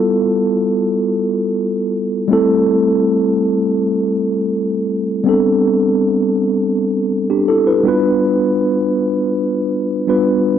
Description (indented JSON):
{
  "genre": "R&B",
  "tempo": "free time",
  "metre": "none",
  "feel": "none",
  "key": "A minor",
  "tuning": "A4 = 442 Hz",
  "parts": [
    { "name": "mellow tine electric piano", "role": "solo", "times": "0.0-10.6 s", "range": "G3 to B4", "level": "-14 LUFS", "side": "equal", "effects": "medium stereo tremolo" }
  ],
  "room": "little or no reverb",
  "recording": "dry, gritty hardware recording, cassette tape",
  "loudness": "-14 LUFS",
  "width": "side -9 dB against mid",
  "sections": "0.0-5.3 A section; 5.3-10.6 B section",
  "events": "none",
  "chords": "0.0 G13; 2.3 C6/G; 5.3 Am11; 7.9 G7"
}